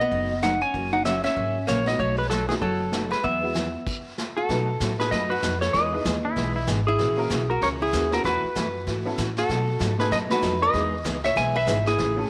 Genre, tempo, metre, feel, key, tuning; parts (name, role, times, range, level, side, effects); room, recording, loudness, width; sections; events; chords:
country, western swing; 192 BPM; 4/4; swing 61% on 8ths; E major; A4 = 440 Hz
clean lap steel guitar; melody; 0.0-12.3 s; G#4 to G#5; -27 LUFS; equal; slapback echo
archtop guitar, miked and amplified; second line; 0.0-12.3 s; E3 to E5; -33 LUFS; equal
picked steel-string acoustic guitar; accompaniment; 0.1-12.2 s; B2 to G#4; -34 LUFS; equal
upright bass; bass; 0.1-12.3 s; F#1 to B2; -32 LUFS; equal
vintage brush drum kit; drums; 0.1-12.3 s; brushed snare drum, crash cymbal, hi-hat, kick drum, snare drum; -35 LUFS; equal
honky-tonk upright piano; accompaniment; 0.9-12.3 s; F#3 to B4; -35 LUFS; equal
clean lap steel guitar; second line; 6.2-6.7 s; E4; -33 LUFS; equal
moderate echo chamber reverb, RT60 1.4 s, small room ambience; -24 LUFS; mono
0.0-4.5 A section; 4.5-12.3 B section
stop 3.9-4.5
0.0 B7; 0.7 F#; 2.0 B7; 3.2 Eadd9; 4.5 B7; 5.7 Emaj7; 7.0 F#7; 8.2 B7sus4; 9.5 B7; 10.7 Emaj7